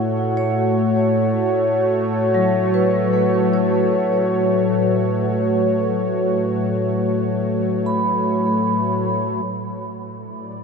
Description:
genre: ambient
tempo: 76 BPM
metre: 4/4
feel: straight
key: unclear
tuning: A4 = 442 Hz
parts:
  - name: warm analog pad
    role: sustained chords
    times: 0.0-10.6 s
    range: A2 to D5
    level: -20 LUFS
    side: equal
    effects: chorus
  - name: vibraphone with medium mallets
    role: arpeggios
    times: 0.0-9.5 s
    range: F#3 to B5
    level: -20 LUFS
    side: left 2 dB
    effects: diffuse ambient delay
  - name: analog drone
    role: drone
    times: 0.0-10.6 s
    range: A3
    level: -28 LUFS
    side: right 1 dB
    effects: chorus
room: wet huge ambient reverb, RT60 7.5 s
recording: none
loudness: -17 LUFS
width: side -5 dB against mid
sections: 0.0-9.4 A section; 9.4-10.6 B section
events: none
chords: 0.0 F#m/A; 9.4 Asus4

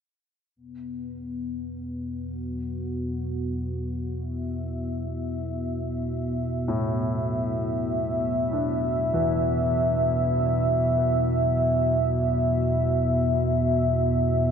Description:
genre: dark ambient drone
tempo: 49 BPM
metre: 4/4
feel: straight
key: unclear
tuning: A4 = 439 Hz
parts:
  - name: dark analog pad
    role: sustained chords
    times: 0.6-14.5 s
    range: B3 to E5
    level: -26 LUFS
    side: left 1 dB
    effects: chorus
  - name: deep rumbling drone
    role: drone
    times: 1.0-14.5 s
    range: E2 to B2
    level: -28 LUFS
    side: right 2 dB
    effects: built-in reverb
  - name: dark concert grand piano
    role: arpeggios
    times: 6.7-14.5 s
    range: E2 to D4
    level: -31 LUFS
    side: left 2 dB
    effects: diffuse ambient delay
room: wet cathedral reverb, RT60 5.2 s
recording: cassette tape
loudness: -23 LUFS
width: side -7 dB against mid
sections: 0.5-14.5 A section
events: none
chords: 0.5 Esus2

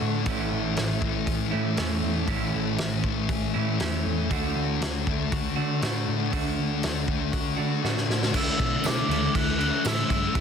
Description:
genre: rock, shoegaze and dream pop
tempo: 119 BPM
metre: 4/4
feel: straight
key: D major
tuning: A4 = 439 Hz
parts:
  - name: electric guitar through a small old amp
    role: arpeggios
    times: 0.0-8.3 s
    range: E3 to F#4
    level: -38 LUFS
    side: right 1 dB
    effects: lush chorus, tape echo
  - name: overdriven semi-hollow guitar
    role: riff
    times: 0.0-10.4 s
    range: A2 to F#4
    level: -31 LUFS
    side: right 12 dB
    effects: reverse reverb
  - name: thick fuzz guitar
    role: riff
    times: 0.0-10.4 s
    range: A2 to D4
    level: -28 LUFS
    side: left 12 dB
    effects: distortion, analog chorus
  - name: hollow-body short-scale picked electric bass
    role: bass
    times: 0.0-10.4 s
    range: A1 to D3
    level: -30 LUFS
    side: equal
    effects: none
  - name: loose indie drum kit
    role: drums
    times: 0.3-10.4 s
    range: crash cymbal, hi-hat, kick drum, snare drum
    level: -29 LUFS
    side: equal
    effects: none
  - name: pure breathy sine lead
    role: melody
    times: 8.4-10.4 s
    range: D6 to F#6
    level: -30 LUFS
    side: right 1 dB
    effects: chorus, tape echo
  - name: tambourine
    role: percussion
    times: 8.8-10.0 s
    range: none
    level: -38 LUFS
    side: right 12 dB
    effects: none
room: studio reverb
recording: dense, heavily limited modern master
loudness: -23 LUFS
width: side -7 dB against mid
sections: 0.0-8.3 A section; 8.3-10.4 B section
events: drum fill 7.8-8.3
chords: 0.3 A; 4.3 D; 8.3 Dsus2

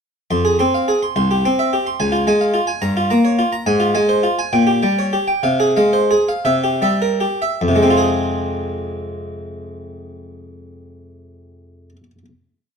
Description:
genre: classical, baroque-style suite movement for harpsichord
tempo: 50-73 BPM (dotted quarters)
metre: 6/8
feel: rubato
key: F minor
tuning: A4 = 441 Hz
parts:
  - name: harpsichord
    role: solo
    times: 0.3-12.2 s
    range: C2 to C6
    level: -15 LUFS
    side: equal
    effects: none
room: moderate stone room reverb, RT60 1.0 s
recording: dark, warm production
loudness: -15 LUFS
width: side -6 dB against mid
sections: 0.3-7.6 A section; 7.6-12.3 final chord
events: slowing down 2.8-7.6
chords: 0.3 Fm; 1.2 C; 2.0 Db; 2.8 Gm7b5; 3.7 Fm/Ab; 4.5 Gdim/Bb; 5.5 Fm/C; 6.5 C7; 7.6 Fm

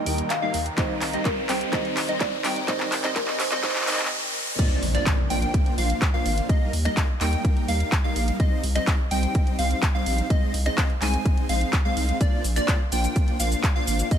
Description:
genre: EDM, festival progressive house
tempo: 126 BPM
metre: 4/4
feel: straight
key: unclear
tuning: A4 = 439 Hz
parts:
  - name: kalimba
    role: melody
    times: 0.0-4.1 s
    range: Bb4 to F5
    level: -31 LUFS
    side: right 3 dB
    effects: dub echo
  - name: dark grand piano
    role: accompaniment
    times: 0.0-4.6 s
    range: Eb3 to Eb4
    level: -36 LUFS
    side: left 4 dB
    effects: sidechain pumping, dub echo
  - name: lush unison pad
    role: sustained chords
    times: 0.0-4.1 s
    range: Eb4 to Bb5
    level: -39 LUFS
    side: left 1 dB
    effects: none
  - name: plucky unison lead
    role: arpeggios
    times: 0.0-14.2 s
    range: D5 to Ab5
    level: -30 LUFS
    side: equal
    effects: sidechain pumping, dub echo
  - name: dense compressed supersaw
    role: riff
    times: 0.0-14.2 s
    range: G3 to Ab5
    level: -30 LUFS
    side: equal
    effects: sidechain pumping, low-pass filter, dub echo
  - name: riser and impact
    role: sound effects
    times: 0.0-6.5 s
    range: none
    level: -31 LUFS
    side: equal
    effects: none
  - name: saturated sub bass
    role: bass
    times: 0.1-14.0 s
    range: Ab1 to Eb2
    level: -25 LUFS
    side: equal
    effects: sidechain pumping
  - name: house drum kit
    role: drums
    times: 0.1-14.2 s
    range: crash cymbal, finger snaps, handclaps, hi-hat, shaker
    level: -29 LUFS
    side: equal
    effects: overdrive
  - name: electronic kick drum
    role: drums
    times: 0.8-14.2 s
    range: none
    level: -23 LUFS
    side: equal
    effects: overdrive
room: digital ambience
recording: high-pass filter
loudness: -21 LUFS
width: side -9 dB against mid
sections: 0.0-4.6 A section; 4.6-14.2 B section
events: build-up 0.0-4.6; drum fill 0.0-4.1; riser 0.0-4.6; filter sweep on supersaw synth 0.0-4.6; filter sweep 0.0-4.6; stop 4.1-4.6; drop 4.6-14.2; impact 4.6-6.5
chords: 0.0 Eb; 0.8 Cm; 2.7 Ab/C; 4.6 Bbadd9; 6.5 Eb; 8.4 Cm; 10.3 Ab/C; 12.2 Bbadd9

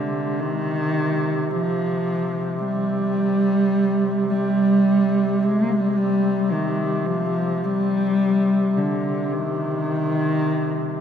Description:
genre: caucasian folk, Caucasian lament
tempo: 54 BPM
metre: 4/4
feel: rubato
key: C minor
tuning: A4 = 440 Hz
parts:
  - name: dark cello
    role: melody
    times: 0.0-11.0 s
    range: D3 to Bb3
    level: -20 LUFS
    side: equal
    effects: none
  - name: warm duduk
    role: drone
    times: 0.0-11.0 s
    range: C3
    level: -27 LUFS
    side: equal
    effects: none
room: wet cathedral reverb, RT60 6.5 s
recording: minimal, uncompressed stereo recording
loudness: -19 LUFS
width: side -8 dB against mid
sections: 0.0-11.0 A section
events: none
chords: none

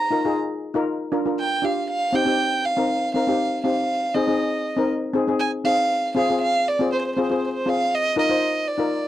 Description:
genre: calypso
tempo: 119 BPM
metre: 4/4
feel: straight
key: unclear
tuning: A4 = 440 Hz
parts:
  - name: dark violin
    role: melody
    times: 0.0-9.1 s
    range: C5 to Bb5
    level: -22 LUFS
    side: right 2 dB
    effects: none
  - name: steel pan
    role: accompaniment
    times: 0.1-8.9 s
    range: C4 to C5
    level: -22 LUFS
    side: left 2 dB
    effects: none
room: light reverb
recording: dry, close 1970s-style studio recording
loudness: -20 LUFS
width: side -13 dB against mid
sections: 0.0-9.1 A section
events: none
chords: 0.0 Bbsus4; 0.9 Bb; 1.9 Cm; 3.9 Ab; 5.9 Fm; 7.9 Bbsus4

